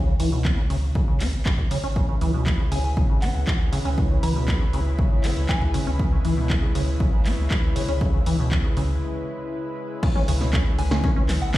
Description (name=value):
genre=acid house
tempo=119 BPM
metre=4/4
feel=straight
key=C# minor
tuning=A4 = 440 Hz
part: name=liquid acid bass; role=riff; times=0.0-11.6 s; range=B2 to C#4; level=-28 LUFS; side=left 1 dB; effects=phaser, overdrive, analog chorus, analog delay
part: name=warm sub bass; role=bass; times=0.0-11.6 s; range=G#1 to C#2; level=-25 LUFS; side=equal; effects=sidechain pumping
part: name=punchy analog drum machine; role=drums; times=0.2-11.6 s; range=crash cymbal, handclaps, hi-hat, rim click, snare drum, toms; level=-31 LUFS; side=equal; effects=none
part: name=electronic kick drum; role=drums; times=0.4-11.6 s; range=none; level=-23 LUFS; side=equal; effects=none
part: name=lush unison pad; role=sustained chords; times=2.0-11.6 s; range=C#3 to B4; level=-31 LUFS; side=left 1 dB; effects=chorus, sidechain pumping
part: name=soft synth bell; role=melody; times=2.7-5.9, 10.8-11.6 s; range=F#5 to B5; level=-34 LUFS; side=left 1 dB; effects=chorus, analog delay
room=light reverb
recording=played on a big sound system in a bare room, stone room reverb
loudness=-20 LUFS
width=side -16 dB against mid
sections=0.0-10.0 A section; 10.0-11.6 B section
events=break 9.0-10.0; drop 10.0-11.6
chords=0.0 C#m7